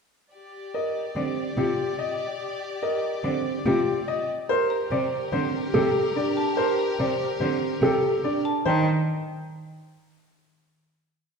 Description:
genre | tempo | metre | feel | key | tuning
classical, minimalist pattern music | 144 BPM | 5/4 | straight | Eb lydian | A4 = 440 Hz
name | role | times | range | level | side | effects
rich studio violin section | sustained chords | 0.3-8.4 s | G4 to D5 | -32 LUFS | left 4 dB | none
clear grand piano | melody | 0.7-8.9 s | G4 to Eb5 | -28 LUFS | left 5 dB | none
dark concert grand piano | arpeggios | 0.7-8.9 s | C4 to C5 | -27 LUFS | right 5 dB | none
rich cello | accompaniment | 1.2-8.9 s | C3 to Eb3 | -28 LUFS | right 1 dB | none
xylophone with wooden mallets | arpeggios | 4.7-8.9 s | G5 to Bb5 | -33 LUFS | left 2 dB | none
room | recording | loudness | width
wet recital hall reverb, RT60 1.7 s | heard from further back in the room | -23 LUFS | side -5 dB against mid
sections
0.3-8.7 A section; 8.7-10.7 final chord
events
none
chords
0.3 Ebmaj9; 4.5 Gmadd9; 8.7 Eb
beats
| 0.33 0.74 1.16 1.58 1.99 | 2.41 2.83 3.24 3.66 4.08 | 4.49 4.91 5.33 5.74 6.16 | 6.58 6.99 7.41 7.83 8.24 | 8.66

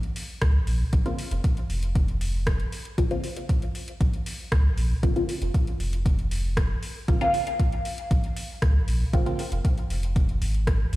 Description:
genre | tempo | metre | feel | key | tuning
dub techno | 117 BPM | 4/4 | straight | Bb minor | A4 = 440 Hz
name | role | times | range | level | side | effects
deep house drum kit | drums | 0.0-11.0 s | hi-hat, rim click | -36 LUFS | equal | overdrive
warm sub bass | bass | 0.4-11.0 s | F1 to Db2 | -24 LUFS | equal | sidechain pumping
electronic kick drum | drums | 0.4-10.8 s | none | -25 LUFS | equal | overdrive
filtered dub chord stab | stabs | 1.1-9.4 s | Db3 to F4 | -29 LUFS | left 1 dB | phaser, sidechain pumping, dub echo
room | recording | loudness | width
digital ambience | played on a big sound system in a bare room, stone room reverb | -23 LUFS | side -17 dB against mid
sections
0.0-11.0 A section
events
none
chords
0.0 Bbmadd9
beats
0.42 | 0.93 1.44 1.95 2.47 | 2.98 3.49 4.01 4.52 | 5.03 5.54 6.06 6.57 | 7.08 7.59 8.11 8.62 | 9.13 9.65 10.16 10.67

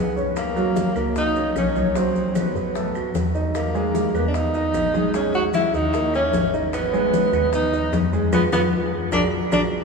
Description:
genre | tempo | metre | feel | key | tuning
Afro-Cuban jazz | 151 BPM | 4/4 | straight | unclear | A4 = 440 Hz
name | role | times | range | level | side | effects
breathy tenor saxophone | melody | 0.0-9.6 s | Bb3 to Gb4 | -24 LUFS | equal | none
breathy concert flute | second line | 0.0-9.7 s | Bb4 to Gb5 | -30 LUFS | right 4 dB | none
warm concert grand piano | accompaniment | 0.0-9.7 s | Gb3 to G5 | -25 LUFS | right 3 dB | none
woody FM bass | bass | 0.0-9.7 s | Ab1 to Gb2 | -28 LUFS | left 1 dB | none
bongos | percussion | 0.2-9.6 s | none | -32 LUFS | left 3 dB | none
congas | percussion | 0.2-9.6 s | none | -27 LUFS | left 5 dB | none
maracas | percussion | 0.2-9.6 s | none | -45 LUFS | right 6 dB | none
claves | percussion | 0.4-9.6 s | none | -40 LUFS | right 1 dB | none
room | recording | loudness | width
wet cathedral reverb, RT60 5.1 s | recorded in a church or concert hall | -19 LUFS | side -4 dB against mid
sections
0.0-9.8 A section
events
band accent 8.3-9.8; drum fill 8.9-9.8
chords
0.4 Gb; 2.0 B7b9; 3.6 Emaj7; 5.1 Gb13/Bb (rootless); 5.9 Eb7; 6.7 Abm; 8.3 Fdim; 9.1 Bbaug7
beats
| 0.37 0.76 1.16 1.56 | 1.96 2.36 2.75 3.15 | 3.55 3.95 4.35 4.75 | 5.14 5.54 5.94 6.34 | 6.74 7.13 7.53 7.93 | 8.33 8.73 9.12 9.52

